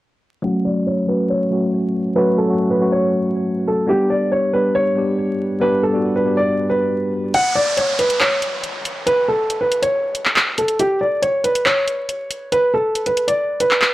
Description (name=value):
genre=hip hop, drill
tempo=139 BPM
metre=4/4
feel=half-time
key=F# phrygian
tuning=A4 = 438 Hz
part: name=dark baby grand piano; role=melody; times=0.4-13.9 s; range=G4 to F#5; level=-18 LUFS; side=equal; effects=low-pass filter, tape echo
part: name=mellow tine electric piano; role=accompaniment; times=0.4-7.4 s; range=F#3 to G4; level=-18 LUFS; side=equal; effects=medium stereo tremolo, low-pass filter
part: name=drill drum kit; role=drums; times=7.3-13.9 s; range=handclaps, hi-hat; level=-18 LUFS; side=equal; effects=none
part: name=downlifter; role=sound effects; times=7.3-10.8 s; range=none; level=-26 LUFS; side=right 1 dB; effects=none
room=digital ambience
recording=dry, gritty hardware recording, vinyl crackle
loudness=-16 LUFS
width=side -16 dB against mid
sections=0.4-7.3 A section; 7.3-13.9 B section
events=filter sweep 0.4-7.3; kick muted 7.3-13.9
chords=0.4 F#m; 3.9 G; 7.3 N.C.